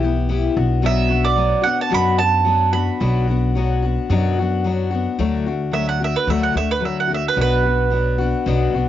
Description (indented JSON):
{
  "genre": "folk rock and heartland rock",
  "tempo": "110 BPM",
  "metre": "4/4",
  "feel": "straight",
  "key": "unclear",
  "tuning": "A4 = 440 Hz",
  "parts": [
    { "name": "picked steel-string acoustic guitar", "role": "accompaniment", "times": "0.0-8.9 s", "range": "B2 to G4", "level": "-21 LUFS", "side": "left 7 dB", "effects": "none" },
    { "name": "upright bass", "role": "bass", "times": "0.0-8.9 s", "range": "B1 to F#2", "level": "-20 LUFS", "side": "equal", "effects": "none" },
    { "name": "mandolin", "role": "melody", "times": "0.9-8.9 s", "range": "B4 to B5", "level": "-20 LUFS", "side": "right 6 dB", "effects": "cassette tape" }
  ],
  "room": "light reverb",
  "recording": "home recording on cassette, nothing above 7.5 kHz",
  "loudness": "-16 LUFS",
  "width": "side -12 dB against mid",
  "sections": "0.0-5.2 A section; 5.2-8.9 B section",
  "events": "mandolin solo 5.2-8.9",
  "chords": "0.0 Em; 0.6 Bm; 5.2 D; 7.4 Bm"
}